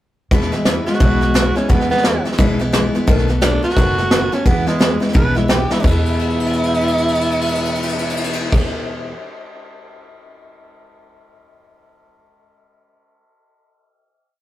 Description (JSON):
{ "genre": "rockabilly", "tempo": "174 BPM", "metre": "4/4", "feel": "swing 62% on 8ths", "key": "E major", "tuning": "A4 = 440 Hz", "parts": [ { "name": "picked steel-string acoustic guitar", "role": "accompaniment", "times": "0.3-9.1 s", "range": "E2 to F#4", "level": "-20 LUFS", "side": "left 1 dB", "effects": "none" }, { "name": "upright bass", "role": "bass", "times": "0.3-8.5 s", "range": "F#1 to E2", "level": "-22 LUFS", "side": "equal", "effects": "none" }, { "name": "soft brush drum kit", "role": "drums", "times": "0.3-10.1 s", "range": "crash cymbal, hi-hat, kick drum, ride cymbal, snare drum", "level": "-18 LUFS", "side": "equal", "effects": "none" }, { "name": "growling tenor saxophone", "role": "melody", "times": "0.7-8.5 s", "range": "G#3 to B4", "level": "-20 LUFS", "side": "right 1 dB", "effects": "none" } ], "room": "light reverb", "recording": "rough rehearsal-room recording, tube saturation", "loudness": "-14 LUFS", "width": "side -14 dB against mid", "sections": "0.3-5.8 A section; 5.8-8.6 final chord", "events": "drum fill 5.7, 6.0-8.5", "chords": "0.3 E; 3.1 B7; 4.5 E" }